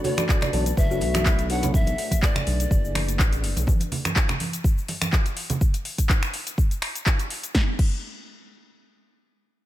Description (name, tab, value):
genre	afro house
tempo	124 BPM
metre	4/4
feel	swing 54% on 16ths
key	unclear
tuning	A4 = 440 Hz
part	breathy pan flute	melody	0.0-3.2 s	D5 to F#5	-31 LUFS	left 1 dB	dub echo
part	dark analog pad	sustained chords	0.0-3.7 s	A3 to B4	-36 LUFS	left 1 dB	chorus, sidechain pumping
part	mellow tonewheel organ	stabs	0.0-1.7 s	D4 to E5	-33 LUFS	right 4 dB	chorus vibrato, sidechain pumping, dub echo
part	deep house drum kit	drums	0.0-7.9 s	crash cymbal, finger snaps, handclaps, hi-hat, shaker, snare drum	-28 LUFS	left 1 dB	overdrive
part	congas	percussion	0.0-5.6 s	none	-30 LUFS	right 3 dB	none
part	kalimba	arpeggios	0.1-1.7 s	F#4 to B5	-31 LUFS	left 6 dB	sidechain pumping, dub echo
part	electronic kick drum	drums	0.3-7.9 s	none	-21 LUFS	equal	none
part	smooth synth bass	bass	0.5-3.6 s	F#1 to B1	-26 LUFS	equal	sidechain pumping
room	digital ambience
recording	none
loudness	-21 LUFS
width	side -14 dB against mid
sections	0.0-7.5 A section; 7.5-9.7 B section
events	drop 0.0-7.5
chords	0.0 Bm7; 7.5 N.C.